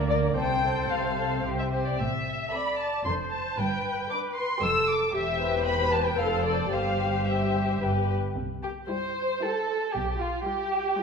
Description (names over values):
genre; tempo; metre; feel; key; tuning
quick classical-period movement for symphony orchestra; 113 BPM; 3/4; rubato; C major; A4 = 440 Hz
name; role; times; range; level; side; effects
muted chamber violin section; second line; 0.0-11.0 s; Bb3 to C5; -30 LUFS; left 1 dB; none
muted chamber viola section; accompaniment; 0.0-11.0 s; G3 to D5; -31 LUFS; left 2 dB; none
muted chamber cello section; bass; 0.0-10.4 s; E2 to D3; -34 LUFS; right 2 dB; none
muted chamber double bass section; bass; 0.0-10.4 s; E1 to D2; -32 LUFS; right 2 dB; none
muted chamber violin section; melody; 0.1-11.0 s; C5 to E6; -29 LUFS; left 1 dB; none
room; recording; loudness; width
wet scoring stage reverb, RT60 1.5 s; minimal, uncompressed stereo recording; -25 LUFS; side -5 dB against mid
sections
0.0-8.4 A section; 8.4-11.0 B section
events
none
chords
0.4 F/C; 2.0 Am; 3.0 Dm7/F; 3.6 G; 4.6 G7/F; 5.1 C/E; 6.2 F; 6.7 C/G; 8.4 C; 9.9 G7/B